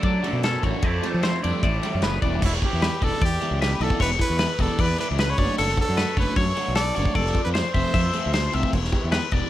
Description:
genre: math rock and midwest emo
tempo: 152 BPM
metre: 4/4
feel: straight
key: unclear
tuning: A4 = 440 Hz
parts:
  - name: twangy electric guitar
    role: accompaniment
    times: 0.0-2.4 s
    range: F2 to A4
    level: -32 LUFS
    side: right 6 dB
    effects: phaser, tape echo
  - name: twelve-string electric guitar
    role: arpeggios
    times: 0.0-9.5 s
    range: A4 to E5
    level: -28 LUFS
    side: left 6 dB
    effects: spring reverb
  - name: crunchy overdriven guitar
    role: riff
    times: 0.0-9.5 s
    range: E3 to G4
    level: -30 LUFS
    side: right 1 dB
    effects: phaser
  - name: fuzz fingered electric bass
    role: bass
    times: 0.0-9.4 s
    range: E1 to F#3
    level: -26 LUFS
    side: equal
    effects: overdrive
  - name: loose indie drum kit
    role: drums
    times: 0.0-9.4 s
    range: crash cymbal, kick drum, ride cymbal, snare drum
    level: -25 LUFS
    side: equal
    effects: tape echo
  - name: bright trumpet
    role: melody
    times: 2.5-8.5 s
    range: E4 to D5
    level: -28 LUFS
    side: right 2 dB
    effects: tape echo
room: small room ambience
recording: echo-heavy mix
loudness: -20 LUFS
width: side -13 dB against mid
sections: 0.0-2.4 A section; 2.4-9.5 B section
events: none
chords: 0.0 Dmaj7/F#; 0.8 Fmaj9; 1.6 A9sus4; 2.4 Em7; 5.4 Dmaj7/F#; 7.2 Fmaj7; 8.7 Em7

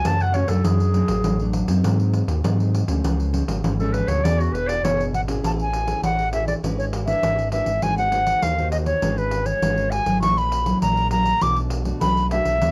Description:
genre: samba and choro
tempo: 100 BPM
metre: 4/4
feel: straight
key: A major from 5.4 s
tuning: A4 = 440 Hz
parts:
  - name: clear clarinet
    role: second line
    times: 0.0-5.0 s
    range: F#4 to A5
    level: -26 LUFS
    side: equal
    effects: cassette tape
  - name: nylon-string guitar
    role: accompaniment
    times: 0.0-12.7 s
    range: F#2 to B#4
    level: -29 LUFS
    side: equal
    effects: cassette tape
  - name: smooth gliding synth bass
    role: bass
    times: 0.0-12.7 s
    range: E1 to G#2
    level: -26 LUFS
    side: equal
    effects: none
  - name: pandeiro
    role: percussion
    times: 0.1-12.7 s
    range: none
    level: -30 LUFS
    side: equal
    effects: none
  - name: breathy silver concert flute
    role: melody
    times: 5.1-12.7 s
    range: B4 to D6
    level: -24 LUFS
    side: equal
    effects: cassette tape
room: moderate small room reverb, RT60 0.5 s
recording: home recording on cassette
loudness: -21 LUFS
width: mono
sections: 0.0-5.4 A section; 5.4-12.7 B section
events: clarinet solo 0.0-5.4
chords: 0.0 F#m; 0.7 D; 1.9 G#7; 3.0 C#; 4.2 E7; 5.4 Amaj7; 6.6 E7/G#; 7.8 G#7; 9.0 C#7/G#; 10.2 F#7/A#; 11.4 Bm7

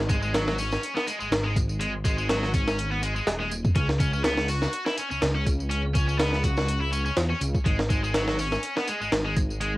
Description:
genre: breakbeat, breaks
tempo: 123 BPM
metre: 4/4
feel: swing 55% on 16ths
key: unclear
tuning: A4 = 439 Hz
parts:
  - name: dark detuned saw bass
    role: bass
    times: 0.0-9.8 s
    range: D#1 to E2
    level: -28 LUFS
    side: equal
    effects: none
  - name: high-gain distorted guitar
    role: riff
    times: 0.1-9.7 s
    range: F#3 to F#4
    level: -29 LUFS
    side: left 1 dB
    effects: distortion, analog delay
  - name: breakbeat sampler-style drum kit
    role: drums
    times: 0.1-9.7 s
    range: hi-hat, kick drum, snare drum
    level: -25 LUFS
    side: equal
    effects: cassette tape
  - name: tambourine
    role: drums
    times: 0.1-9.7 s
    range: none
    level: -40 LUFS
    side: equal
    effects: cassette tape
room: light reverb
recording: home recording on cassette, vinyl crackle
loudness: -23 LUFS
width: side -18 dB against mid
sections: 0.0-9.8 A section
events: none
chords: 0.0 G#5; 3.8 C#m; 7.7 N.C.

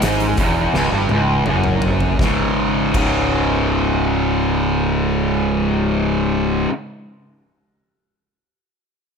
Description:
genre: stoner and doom metal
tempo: 80-87 BPM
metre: 4/4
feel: straight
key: C# minor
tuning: A4 = 440 Hz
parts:
  - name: fuzz guitar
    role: riff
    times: 0.0-6.7 s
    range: C#2 to C#3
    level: -17 LUFS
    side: equal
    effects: distortion
  - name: fuzz fingered electric bass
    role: bass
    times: 0.0-6.6 s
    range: C#1 to G#1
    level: -22 LUFS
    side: equal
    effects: overdrive, tube saturation
  - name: oversized low-tuned drum kit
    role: drums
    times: 0.0-3.2 s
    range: crash cymbal, hi-hat, kick drum, snare drum, toms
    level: -23 LUFS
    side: equal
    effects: none
room: light reverb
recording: none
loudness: -15 LUFS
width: side -6 dB against mid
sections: 0.0-2.2 A section; 2.2-5.2 B section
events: slowing down 0.0-2.2; drum fill 0.7-2.2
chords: 0.0 C#m; 2.2 C#5

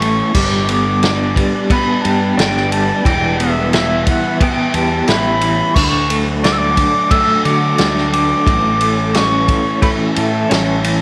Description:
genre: psychedelic rock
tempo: 89 BPM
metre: 4/4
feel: straight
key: E dorian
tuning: A4 = 440 Hz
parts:
  - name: reedy silver concert flute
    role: melody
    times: 0.0-10.8 s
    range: E5 to E6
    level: -21 LUFS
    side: equal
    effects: tape echo
  - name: soft string machine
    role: sustained chords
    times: 0.1-11.0 s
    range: E3 to F#5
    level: -28 LUFS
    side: equal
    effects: none
  - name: electric guitar through a small old amp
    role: riff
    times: 0.0-11.0 s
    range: A2 to A4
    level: -20 LUFS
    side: equal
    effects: tremolo
  - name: fuzz fingered electric bass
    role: bass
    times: 0.0-11.0 s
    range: E1 to D3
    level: -23 LUFS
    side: equal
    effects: overdrive
  - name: vintage drum kit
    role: drums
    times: 0.0-11.0 s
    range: crash cymbal, kick drum, ride cymbal, snare drum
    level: -20 LUFS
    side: equal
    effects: none
room: light reverb, small room ambience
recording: none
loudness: -15 LUFS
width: mono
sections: 0.0-11.0 A section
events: none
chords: 0.4 G; 3.1 Em; 5.8 D; 8.5 A

